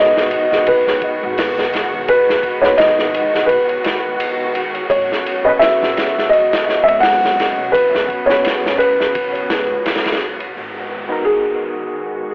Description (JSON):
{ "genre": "trip hop", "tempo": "85 BPM", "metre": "4/4", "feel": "swing 56% on 16ths", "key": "G# minor", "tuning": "A4 = 440 Hz", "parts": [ { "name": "felt-muted upright piano", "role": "melody", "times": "0.0-12.3 s", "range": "G#4 to F#5", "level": "-18 LUFS", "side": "equal", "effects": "vintage 12-bit sampler grit, cassette tape, tape echo" }, { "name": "barky reed electric piano", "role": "accompaniment", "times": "0.0-12.3 s", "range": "B3 to B4", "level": "-27 LUFS", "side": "equal", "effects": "overdrive, fast tremolo, harmonic tremolo, cassette tape, tape echo" }, { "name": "dark symphonic string section", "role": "sustained chords", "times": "0.0-12.3 s", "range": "C#3 to F#4", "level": "-27 LUFS", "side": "equal", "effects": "low-pass filter, cassette tape" }, { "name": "upright bass", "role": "bass", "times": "0.2-12.3 s", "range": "F#1 to G#2", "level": "-37 LUFS", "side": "equal", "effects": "none" }, { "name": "crunchy breakbeat drum kit", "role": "drums", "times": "0.2-10.6 s", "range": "hi-hat, kick drum, ride cymbal, snare drum", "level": "-23 LUFS", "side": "equal", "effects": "cassette tape" }, { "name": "downlifter", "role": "sound effects", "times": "10.6-12.3 s", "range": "none", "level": "-33 LUFS", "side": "equal", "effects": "none" } ], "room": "moderate studio ambience, RT60 0.5 s", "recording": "home recording on cassette, telephone sound", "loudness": "-16 LUFS", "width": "mono", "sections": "0.0-10.6 A section; 10.6-12.3 B section", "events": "filter sweep on string section 10.6-12.3", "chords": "0.0 G#m7; 4.9 F#sus4; 10.6 G#m7" }